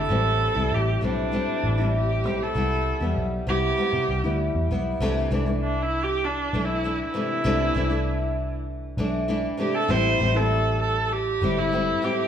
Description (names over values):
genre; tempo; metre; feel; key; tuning
indie pop, bedroom pop; 98 BPM; 4/4; straight; C major; A4 = 437 Hz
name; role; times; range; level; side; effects
rich viola; melody; 0.0-12.3 s; D4 to C5; -26 LUFS; right 3 dB; none
flamenco guitar; accompaniment; 0.0-12.3 s; A2 to E4; -26 LUFS; left 2 dB; vibrato effect
vintage muted picked electric bass; bass; 0.0-11.9 s; G1 to C3; -26 LUFS; equal; none
room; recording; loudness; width
moderate large studio reverb, RT60 1.1 s; band playing live in one room; -22 LUFS; side -9 dB against mid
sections
0.0-5.0 A section; 5.0-12.3 B section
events
viola solo 5.0-12.3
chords
0.1 Am7; 2.6 Cmaj7; 5.0 C69; 9.9 Am7